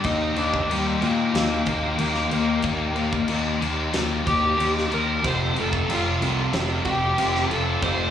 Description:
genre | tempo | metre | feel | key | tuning
hard rock | 92 BPM | 4/4 | straight | unclear | A4 = 436 Hz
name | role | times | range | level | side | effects
dark smooth lead guitar | melody | 0.0-8.1 s | G3 to C5 | -25 LUFS | left 1 dB | overdrive, digital delay
overdriven tonewheel organ | sustained chords | 0.0-8.1 s | G4 to C6 | -34 LUFS | right 1 dB | slow rotary speaker, chorus vibrato
crunchy overdriven guitar | riff | 0.0-8.1 s | F2 to Eb4 | -28 LUFS | left 8 dB | none
growling fingered electric bass | bass | 0.0-8.1 s | F1 to Bb2 | -27 LUFS | equal | overdrive
huge arena drum kit | drums | 0.0-8.0 s | crash cymbal, kick drum, snare drum | -28 LUFS | left 1 dB | none
sludgy distorted guitar | riff | 5.2-8.1 s | F2 to F3 | -27 LUFS | right 11 dB | overdrive, slapback echo
room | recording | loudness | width
small room ambience | live gig heard through the venue's PA, club reverb | -20 LUFS | side -9 dB against mid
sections
0.0-8.1 A section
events
none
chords
0.0 Eb; 5.2 F

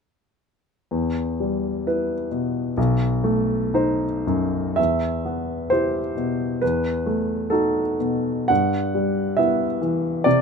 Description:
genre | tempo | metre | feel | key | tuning
classical, romantic character piece for solo piano | 53-70 BPM | 2/4 | rubato | E minor | A4 = 440 Hz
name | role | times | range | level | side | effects
warm baby grand piano | solo | 0.9-10.4 s | B1 to F#5 | -20 LUFS | equal | none
room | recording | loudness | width
little or no reverb | close, detailed microphones | -20 LUFS | side -5 dB against mid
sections
0.9-4.8 A section; 4.8-10.4 B section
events
none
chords
0.9 Em; 2.8 B7b9; 4.8 Em; 6.6 B7/E; 8.5 Em/G

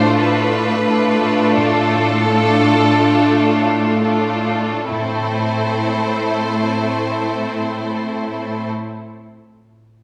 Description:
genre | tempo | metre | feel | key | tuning
classical, slow romantic movement for symphony orchestra | 32-45 BPM | 4/4 | rubato | A minor | A4 = 441 Hz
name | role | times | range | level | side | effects
clear studio violin section | melody | 0.0-8.7 s | A4 to C5 | -25 LUFS | equal | none
rich studio violin section | second line | 0.0-8.7 s | E4 to A4 | -24 LUFS | equal | none
rich symphonic viola section | accompaniment | 0.0-8.7 s | A3 to D4 | -23 LUFS | equal | none
concert harp | arpeggios | 0.0-9.0 s | A2 to E5 | -24 LUFS | equal | none
rich studio cello section | bass | 0.0-8.7 s | A2 | -24 LUFS | equal | none
room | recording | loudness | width
wet recital hall reverb, RT60 1.6 s | recorded in a church or concert hall | -17 LUFS | mono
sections
0.0-4.9 A section; 4.9-10.0 B section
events
slowing down 0.0-4.9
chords
0.0 Dm/A; 4.9 Am

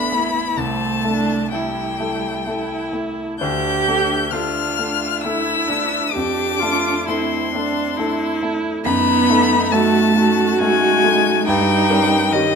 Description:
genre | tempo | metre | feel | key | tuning
classical, slow romantic movement for piano quartet | 62-70 BPM | 3/4 | rubato | unclear | A4 = 440 Hz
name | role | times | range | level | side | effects
rich violin | melody | 0.0-12.6 s | D#5 to G6 | -20 LUFS | left 7 dB | none
warm cello | second line | 0.0-12.6 s | D#3 to G4 | -21 LUFS | right 5 dB | none
rich viola | accompaniment | 0.0-12.6 s | C4 to G4 | -23 LUFS | right 3 dB | none
warm grand piano | accompaniment | 0.0-12.6 s | C2 to A#4 | -23 LUFS | left 2 dB | none
room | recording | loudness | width
wet recital hall reverb, RT60 1.6 s | none | -16 LUFS | side -6 dB against mid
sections
0.0-12.6 A section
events
none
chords
0.0 A5; 0.6 Am/C; 3.4 Dm; 6.1 Dm/F; 8.8 D#dim/F#; 11.5 D#7/G

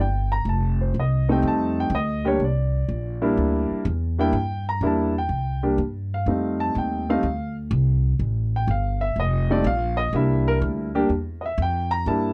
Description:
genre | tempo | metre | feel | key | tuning
jazz, small-group swing and bop | 124 BPM | 4/4 | swing 68% on 8ths | C mixolydian | A4 = 440 Hz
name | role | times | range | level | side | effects
warm grand piano | accompaniment | 0.0-12.3 s | G3 to Bb5 | -26 LUFS | equal | none
upright bass | bass | 0.0-12.3 s | F1 to G2 | -26 LUFS | equal | none
room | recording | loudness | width
little or no reverb | dry, close 1970s-style studio recording | -23 LUFS | mono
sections
0.0-12.3 A section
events
none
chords
0.5 F7; 2.4 C7; 6.3 F7; 10.1 C7

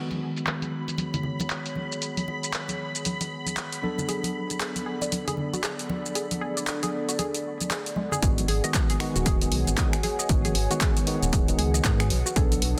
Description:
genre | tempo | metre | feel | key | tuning
deep house | 116 BPM | 4/4 | swing 60% on 16ths | G# minor | A4 = 442 Hz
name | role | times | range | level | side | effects
dark analog pad | sustained chords | 3.3-12.8 s | D4 to A5 | -41 LUFS | equal | chorus, sidechain pumping
tine electric piano | stabs | 0.0-12.8 s | D#3 to A4 | -34 LUFS | equal | overdrive, sidechain pumping, dub echo
soft string machine | texture | 0.6-8.2 s | B5 | -41 LUFS | equal | ensemble chorus, sidechain pumping
warbly tape-like pad | texture | 0.0-12.8 s | B3 to F#5 | -39 LUFS | equal | chorus, built-in reverb, sidechain pumping
punchy analog drum machine | drums | 0.1-12.7 s | finger snaps, handclaps, hi-hat, shaker | -33 LUFS | equal | low-pass filter on hats, low-pass filter on perc, soft clipping on snare, low-pass filter on snare, low-pass filter on cymbals
congas | percussion | 0.1-12.6 s | none | -37 LUFS | equal | none
analog pluck | arpeggios | 4.1-12.5 s | G#3 to D#5 | -37 LUFS | equal | chorus, sidechain pumping, tape echo
organ-like FM bass | bass | 8.2-12.7 s | D#1 to G#2 | -29 LUFS | equal | sidechain pumping
electronic kick drum | drums | 8.2-12.5 s | none | -27 LUFS | equal | none
room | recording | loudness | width
light reverb | dense, heavily limited modern master | -27 LUFS | mono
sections
0.0-8.2 A section; 8.2-12.8 B section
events
filter sweep on analog synth pad 0.0-8.2; drop 8.2-12.8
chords
0.0 G#m7; 3.8 Bm7; 8.2 G#m7; 12.1 Bm7

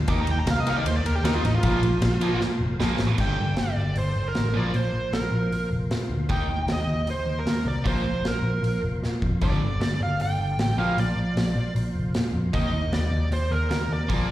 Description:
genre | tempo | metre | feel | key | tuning
hard rock | 154 BPM | 4/4 | straight | unclear | A4 = 441 Hz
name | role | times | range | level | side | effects
overdriven tonewheel organ | sustained chords | 0.0-14.3 s | G3 to C5 | -39 LUFS | equal | slow rotary speaker, chorus vibrato
vintage muted picked electric bass | bass | 0.0-14.3 s | F1 to Bb2 | -25 LUFS | equal | none
smooth overdriven lead guitar | melody | 0.1-14.3 s | Eb4 to D6 | -29 LUFS | right 2 dB | slapback echo, analog delay
distorted electric guitar | riff | 0.1-14.3 s | G2 to Eb4 | -32 LUFS | left 9 dB | distortion, slapback echo
heavy high-gain guitar | riff | 0.1-14.3 s | G2 to Eb4 | -31 LUFS | right 9 dB | distortion, slapback echo
big rock drum kit | drums | 0.1-14.2 s | crash cymbal, hi-hat, kick drum, ride cymbal, snare drum | -29 LUFS | equal | none
room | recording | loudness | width
light reverb | live gig heard through the venue's PA, recital hall reverb | -22 LUFS | side -14 dB against mid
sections
0.0-3.2 A section; 3.2-14.3 B section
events
lead electric guitar solo 0.0-3.2; drum fill 2.4-3.2, 9.0-9.4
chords
0.1 Eb; 1.6 Bb5; 3.2 G5; 4.5 Bb5; 6.3 Eb; 7.9 Bb5; 9.4 G5; 10.8 Bb; 12.5 Eb

